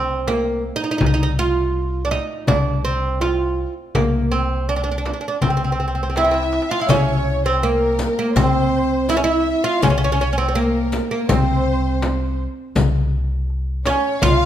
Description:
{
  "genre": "Turkish makam ensemble",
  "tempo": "82 BPM",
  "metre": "4/4",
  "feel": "straight",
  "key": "C makam ussak, C makam hicaz from 6.9 s",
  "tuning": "A4 = 440 Hz",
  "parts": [
    { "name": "oud", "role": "melody", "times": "0.0-14.5 s", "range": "Bb3 to F4", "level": "-20 LUFS", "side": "right 2 dB", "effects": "none" },
    { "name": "upright bass", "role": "bass", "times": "0.0-14.5 s", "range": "C2", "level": "-22 LUFS", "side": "left 1 dB", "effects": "none" },
    { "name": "darbuka", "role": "percussion", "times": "0.3-14.4 s", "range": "none", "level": "-23 LUFS", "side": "left 4 dB", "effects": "none" },
    { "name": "frame drum", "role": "percussion", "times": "0.3-14.4 s", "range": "none", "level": "-25 LUFS", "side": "left 2 dB", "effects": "none" },
    { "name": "breathy mellow low ney", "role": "second line", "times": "6.2-14.5 s", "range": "Bb4 to F5", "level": "-27 LUFS", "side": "left 6 dB", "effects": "none" },
    { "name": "dark studio violin section", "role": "second line", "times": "6.2-14.5 s", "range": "Bb4 to F5", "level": "-27 LUFS", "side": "right 2 dB", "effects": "none" },
    { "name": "riq", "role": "percussion", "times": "6.9-14.4 s", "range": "none", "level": "-29 LUFS", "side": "left 5 dB", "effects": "none" }
  ],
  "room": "moderate recital hall reverb, RT60 1.5 s",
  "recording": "minimal, uncompressed stereo recording",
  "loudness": "-17 LUFS",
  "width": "side -11 dB against mid",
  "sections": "0.0-6.9 A section; 6.9-14.5 B section",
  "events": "drum fill 6.1-6.9",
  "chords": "none"
}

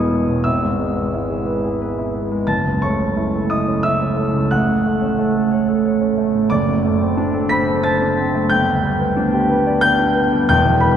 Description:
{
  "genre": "classical, romantic character piece for solo piano",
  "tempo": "90 BPM",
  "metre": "3/4",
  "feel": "rubato",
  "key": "G major from 6.5 s",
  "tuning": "A4 = 436 Hz",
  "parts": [
    { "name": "warm concert grand piano", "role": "solo", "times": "0.0-11.0 s", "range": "E1 to B6", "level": "-15 LUFS", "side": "equal", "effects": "none" }
  ],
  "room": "wet cathedral reverb, RT60 5.8 s",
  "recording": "recorded in a church or concert hall",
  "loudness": "-15 LUFS",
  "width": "side -9 dB against mid",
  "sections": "0.0-11.0 A section",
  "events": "none",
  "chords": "0.4 E/G#; 2.5 F#m7; 4.5 F#m/A; 6.5 D7/F#; 8.5 G"
}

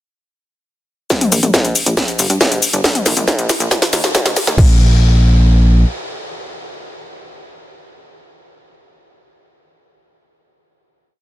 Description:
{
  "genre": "uplifting trance",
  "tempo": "138 BPM",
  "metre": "4/4",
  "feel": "straight",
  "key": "unclear",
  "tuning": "A4 = 437 Hz",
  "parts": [
    { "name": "electronic kick drum", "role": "drums", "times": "1.1-4.7 s", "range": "none", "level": "-15 LUFS", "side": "equal", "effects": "distortion, high-pass filter on kick" },
    { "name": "techno drum kit", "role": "drums", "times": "1.1-4.7 s", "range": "crash cymbal, hi-hat, shaker, snare drum, toms", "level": "-16 LUFS", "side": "left 1 dB", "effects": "high-pass filter on snare, sidechain pumping on hats, high-pass filter on hats, sidechain pumping on perc, high-pass filter on perc, sidechain pumping on toms, high-pass filter on toms, sidechain pumping on cymbals, high-pass filter on cymbals" },
    { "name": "plucky analog bass", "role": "bass", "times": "1.3-5.8 s", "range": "Eb1 to G2", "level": "-13 LUFS", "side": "equal", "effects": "tube saturation, sidechain pumping, high-pass filter" }
  ],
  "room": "digital ambience",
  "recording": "dense, heavily limited modern master",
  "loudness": "-11 LUFS",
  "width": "side -15 dB against mid",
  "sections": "1.1-4.6 build; 4.6-8.1 final chord",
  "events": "build-up 1.1-4.6; drum fill 1.1-4.6",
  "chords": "none"
}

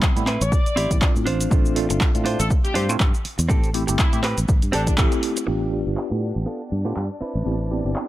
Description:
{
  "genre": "filtered disco house",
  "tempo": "121 BPM",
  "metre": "4/4",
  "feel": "swing 56% on 16ths",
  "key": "unclear",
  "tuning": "A4 = 440 Hz",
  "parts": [
    { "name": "tine electric piano", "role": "accompaniment", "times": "0.0-8.1 s", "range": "G3 to G4", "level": "-26 LUFS", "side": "equal", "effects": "medium stereo tremolo, phaser, sidechain pumping, low-pass filter" },
    { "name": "direct-recorded clean electric guitar", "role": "riff", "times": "0.0-7.9 s", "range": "B3 to C5", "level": "-28 LUFS", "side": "right 3 dB", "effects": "sidechain pumping, low-pass filter" },
    { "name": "electronic kick drum", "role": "drums", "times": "0.0-5.1 s", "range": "none", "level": "-19 LUFS", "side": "equal", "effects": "none" },
    { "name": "punchy analog drum machine", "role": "drums", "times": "0.0-8.1 s", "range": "handclaps, hi-hat, shaker", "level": "-27 LUFS", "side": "equal", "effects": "low-pass filter on snare, sidechain pumping on perc, low-pass filter on perc, sidechain pumping on hats, low-pass filter on hats, low-pass filter on room" },
    { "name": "fingered electric bass", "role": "bass", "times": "0.2-7.9 s", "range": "G1 to A2", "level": "-24 LUFS", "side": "equal", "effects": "sidechain pumping, low-pass filter" },
    { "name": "warm horn section", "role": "melody", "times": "0.4-4.9 s", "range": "D4 to D5", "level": "-29 LUFS", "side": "left 2 dB", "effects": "sidechain pumping, low-pass filter, dub echo" },
    { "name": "muted chamber violin section", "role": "sustained chords", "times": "5.5-8.1 s", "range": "D4 to D5", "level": "-36 LUFS", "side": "equal", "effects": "vintage 12-bit sampler grit, sidechain pumping, low-pass filter" }
  ],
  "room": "little or no reverb",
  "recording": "none",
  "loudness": "-19 LUFS",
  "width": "side -15 dB against mid",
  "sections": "0.0-5.5 A section; 5.5-8.1 B section",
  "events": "band accent 5.0; filter sweep 5.5-8.1",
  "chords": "0.0 Cmaj7; 1.3 Dm7; 3.5 Am7; 5.5 G7; 7.2 Cmaj7"
}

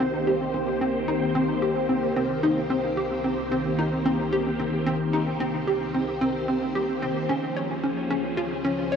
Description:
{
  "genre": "ambient, sequencer-driven space music",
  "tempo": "111 BPM",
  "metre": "4/4",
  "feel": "straight",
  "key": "C phrygian",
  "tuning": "A4 = 440 Hz",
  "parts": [
    { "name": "phased string machine", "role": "sustained chords", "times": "0.0-9.0 s", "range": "Eb3 to C5", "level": "-26 LUFS", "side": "equal", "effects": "ensemble chorus, phaser" },
    { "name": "hollow square pluck", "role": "riff", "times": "0.0-9.0 s", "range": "C4 to Db5", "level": "-26 LUFS", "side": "equal", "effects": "lush chorus, analog delay" },
    { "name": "fat analog bass", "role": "bass", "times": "0.0-9.0 s", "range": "C2 to Db2", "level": "-44 LUFS", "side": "equal", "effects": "tube saturation" }
  ],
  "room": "wet huge ambient reverb, RT60 8.3 s",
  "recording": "worn, warbling old tape, cassette tape, warbly pitch drift",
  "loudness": "-23 LUFS",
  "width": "side -7 dB against mid",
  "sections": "0.0-9.0 A section",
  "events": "none",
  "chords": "0.0 Cm7; 7.3 Dbmaj7"
}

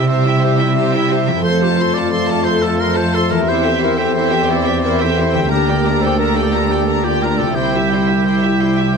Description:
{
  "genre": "cinematic, heroic adventure film score",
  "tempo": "118 BPM (dotted quarters)",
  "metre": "12/8",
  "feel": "straight",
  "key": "unclear",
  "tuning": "A4 = 440 Hz",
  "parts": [
    { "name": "rich studio violin section", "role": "melody", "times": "0.0-9.0 s", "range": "E5 to C6", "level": "-23 LUFS", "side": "left 4 dB", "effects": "none" },
    { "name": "dark clarinet", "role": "second line", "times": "0.0-9.0 s", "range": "E4 to C5", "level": "-24 LUFS", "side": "equal", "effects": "none" },
    { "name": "warm oboe", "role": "second line", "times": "0.0-9.0 s", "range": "G4 to E5", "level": "-23 LUFS", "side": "right 3 dB", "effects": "none" },
    { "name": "warm symphonic violin section", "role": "second line", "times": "0.0-9.0 s", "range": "A4 to E5", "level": "-24 LUFS", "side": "right 3 dB", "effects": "none" },
    { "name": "rich symphonic viola section", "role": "accompaniment", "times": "0.0-9.0 s", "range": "D4 to A4", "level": "-23 LUFS", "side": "right 1 dB", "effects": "none" },
    { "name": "dark French horn section", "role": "sustained chords", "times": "0.0-9.0 s", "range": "G3 to G4", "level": "-21 LUFS", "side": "left 3 dB", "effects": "none" },
    { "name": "concert harp", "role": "arpeggios", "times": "0.0-9.0 s", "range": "C3 to E5", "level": "-24 LUFS", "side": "left 10 dB", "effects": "none" },
    { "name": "rich symphonic cello section", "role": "bass", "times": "0.0-9.0 s", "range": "C2 to C3", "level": "-18 LUFS", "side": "right 4 dB", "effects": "none" }
  ],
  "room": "light reverb",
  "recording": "close, detailed microphones",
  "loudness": "-13 LUFS",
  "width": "side -5 dB against mid",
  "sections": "0.0-9.0 A section",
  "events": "build-up 0.0-9.0",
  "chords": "0.0 C; 1.4 F; 3.5 C/E; 5.5 Gm/D; 7.6 C"
}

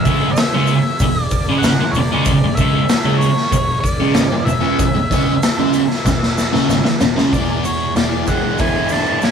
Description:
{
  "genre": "psychedelic rock",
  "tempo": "95 BPM",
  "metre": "4/4",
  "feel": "straight",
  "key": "unclear",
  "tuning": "A4 = 440 Hz",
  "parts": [
    { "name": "octave-fuzz lead guitar", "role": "melody", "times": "0.0-9.3 s", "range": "C#5 to A5", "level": "-22 LUFS", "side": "left 2 dB", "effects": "distortion" },
    { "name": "tonewheel organ", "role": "sustained chords", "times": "0.0-9.3 s", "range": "C#3 to G#4", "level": "-32 LUFS", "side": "right 3 dB", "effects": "none" },
    { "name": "thick fuzz guitar", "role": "riff", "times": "0.0-9.3 s", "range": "E2 to E4", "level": "-16 LUFS", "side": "right 1 dB", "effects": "distortion, phaser" },
    { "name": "picked electric bass", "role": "bass", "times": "0.0-9.3 s", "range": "E1 to E2", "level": "-25 LUFS", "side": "equal", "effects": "none" },
    { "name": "raw garage drum kit", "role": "drums", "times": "0.1-9.3 s", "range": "hi-hat, kick drum, snare drum", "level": "-19 LUFS", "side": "left 1 dB", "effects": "none" },
    { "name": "egg shaker", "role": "percussion", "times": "0.1-9.3 s", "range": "none", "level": "-33 LUFS", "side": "right 5 dB", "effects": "none" }
  ],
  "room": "wet small room ambience, RT60 0.5 s",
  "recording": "rough rehearsal-room recording",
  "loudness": "-14 LUFS",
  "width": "side -7 dB against mid",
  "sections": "0.0-7.3 A section; 7.3-9.3 B section",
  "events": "drum fill 6.1-7.3",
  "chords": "0.0 C#m/E; 7.3 E7"
}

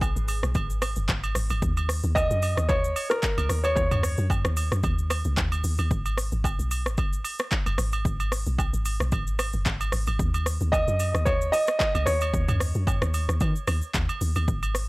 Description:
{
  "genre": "amapiano",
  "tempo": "112 BPM",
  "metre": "4/4",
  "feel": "swing 55% on 16ths",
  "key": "unclear",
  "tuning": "A4 = 440 Hz",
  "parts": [
    { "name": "deep log drum bass", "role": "bass", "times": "0.0-14.9 s", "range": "F#1 to D#3", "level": "-26 LUFS", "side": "equal", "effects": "transformer saturation" },
    { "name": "deep house drum kit", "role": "drums", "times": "0.0-14.9 s", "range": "handclaps, hi-hat, kick drum, rim click, shaker, toms", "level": "-28 LUFS", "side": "equal", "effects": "overdrive" },
    { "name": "agogo bells and woodblock", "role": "percussion", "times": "0.0-14.7 s", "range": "none", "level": "-34 LUFS", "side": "right 5 dB", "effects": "none" },
    { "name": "dark grand piano", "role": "melody", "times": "2.1-4.3, 10.7-13.9 s", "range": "A#4 to D#5", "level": "-26 LUFS", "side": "equal", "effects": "analog delay" }
  ],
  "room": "little or no reverb",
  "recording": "dry, gritty hardware recording, transformer saturation",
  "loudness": "-23 LUFS",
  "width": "side -22 dB against mid",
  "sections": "0.0-14.9 A section",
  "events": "none",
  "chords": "0.0 G#m; 1.6 D#m7; 5.9 G#m; 10.2 D#7(no3)"
}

